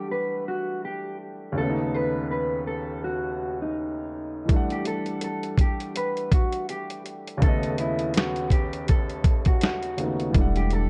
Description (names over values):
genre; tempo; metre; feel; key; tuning
lo-fi hip hop; 82 BPM; 4/4; swing 57% on 16ths; E dorian; A4 = 441 Hz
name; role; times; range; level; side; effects
mellow electric guitar; melody; 0.0-10.9 s; D#4 to B4; -32 LUFS; equal; subtle chorus, low-pass filter
clear upright piano; accompaniment; 0.0-10.9 s; D#2 to F#5; -32 LUFS; equal; cassette tape, low-pass filter
dusty soul sampler-style drum kit; drums; 4.5-10.9 s; hi-hat, kick drum, snare drum; -24 LUFS; equal; none
soft dub sub bass; bass; 10.3-10.9 s; E1; -26 LUFS; equal; none
room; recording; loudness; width
light reverb, digital ambience; dark, warm production; -26 LUFS; mono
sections
0.0-10.3 A section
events
none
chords
0.0 Em11; 1.6 B9/D#; 4.5 Em11; 7.4 B9/D#; 10.3 Em11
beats
0.10 0.83 | 1.56 2.30 3.03 3.76 | 4.49 5.22 5.96 6.69 | 7.42 8.15 8.88 9.61 | 10.35